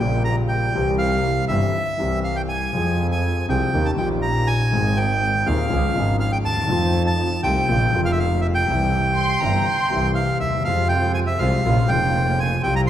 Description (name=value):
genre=tango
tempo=121 BPM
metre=4/4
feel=rubato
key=F harmonic minor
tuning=A4 = 440 Hz
part: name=bandoneon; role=melody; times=0.0-12.9 s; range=E5 to Bb5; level=-23 LUFS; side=right 1 dB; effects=none
part: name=warm concert grand piano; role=accompaniment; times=0.0-12.9 s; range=Eb1 to Ab4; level=-23 LUFS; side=left 2 dB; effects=none
part: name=clear double bass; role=bass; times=0.0-12.9 s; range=F1 to F2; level=-22 LUFS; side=right 1 dB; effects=none
part: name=warm studio violin section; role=second line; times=9.2-10.0 s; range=Bb5 to C6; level=-25 LUFS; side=equal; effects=none
part: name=muted studio string section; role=stabs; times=10.7-12.9 s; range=G3 to F4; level=-29 LUFS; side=right 1 dB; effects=none
room=wet scoring stage reverb, RT60 1.9 s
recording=recorded in a church or concert hall, lossy compression artefacts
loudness=-18 LUFS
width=side -11 dB against mid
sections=0.0-12.9 A section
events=none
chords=0.0 Gdim/Bb; 0.7 C; 2.7 Fm; 3.7 Eb7; 4.7 Ab; 5.7 Db; 6.7 F7; 7.7 Bbm; 8.7 C; 10.7 Fm; 11.6 Bbm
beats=0.25 | 0.75 1.24 1.74 2.24 | 2.74 3.24 3.73 4.23 | 4.72 5.22 5.71 6.21 | 6.70 7.19 7.68 8.18 | 8.67 9.16 9.66 10.16 | 10.65 11.15 11.64 12.14 | 12.63